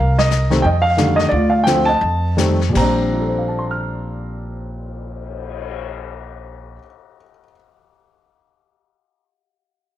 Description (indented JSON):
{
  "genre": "jazz piano trio",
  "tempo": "157-184 BPM",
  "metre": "4/4",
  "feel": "swing 61% on 8ths",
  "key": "Bb major",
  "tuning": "A4 = 439 Hz",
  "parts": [
    { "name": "warm upright piano", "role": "melody", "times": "0.0-7.6 s", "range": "Bb2 to F6", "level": "-18 LUFS", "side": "equal", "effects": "slapback echo" },
    { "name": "upright bass", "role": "bass", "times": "0.0-6.8 s", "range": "Bb1 to F2", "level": "-21 LUFS", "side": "equal", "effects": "none" },
    { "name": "vintage brush drum kit", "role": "drums", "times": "0.2-5.7 s", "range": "brushed snare drum, crash cymbal, cymbal swell, hi-hat, kick drum, snare drum", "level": "-28 LUFS", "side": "left 7 dB", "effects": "none" }
  ],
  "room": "small room ambience",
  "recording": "1960s-style stereo",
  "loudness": "-15 LUFS",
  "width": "side -12 dB against mid",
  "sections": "0.0-2.8 A section; 2.8-5.8 B section",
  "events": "slowing down 0.0-2.8",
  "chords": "0.0 Cm7; 0.6 F7; 1.3 Dm7; 2.0 F7; 2.8 Bb69",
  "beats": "0.31 0.64 0.97 | 1.31 1.66 2.01 2.38 | 2.75 3.13 3.52 3.90 | 4.28 4.66 5.05 5.43"
}